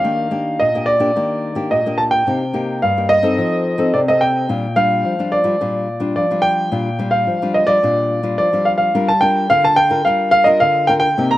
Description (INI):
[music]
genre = samba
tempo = 108 BPM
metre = 4/4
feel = straight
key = Bb major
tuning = A4 = 439 Hz
[part]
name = clear grand piano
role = melody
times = 0.0-11.4 s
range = D5 to Bb5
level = -15 LUFS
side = right 1 dB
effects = slapback echo
[part]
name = nylon-string guitar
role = accompaniment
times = 0.0-11.4 s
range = G2 to Bb4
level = -20 LUFS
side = left 2 dB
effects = slapback echo
[sound]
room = little or no reverb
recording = recorded outdoors, with no room sound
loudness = -14 LUFS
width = side -15 dB against mid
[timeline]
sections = 0.0-8.9 A section; 8.9-11.4 B section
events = none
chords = 0.0 Ebmaj7; 2.3 Cm7; 3.4 F7; 4.5 Bb6; 8.9 Gm7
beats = | 0.04 0.60 1.16 1.71 | 2.27 2.83 3.38 3.94 | 4.50 5.05 5.61 6.17 | 6.72 7.28 7.84 8.39 | 8.95 9.51 10.06 10.62 | 11.18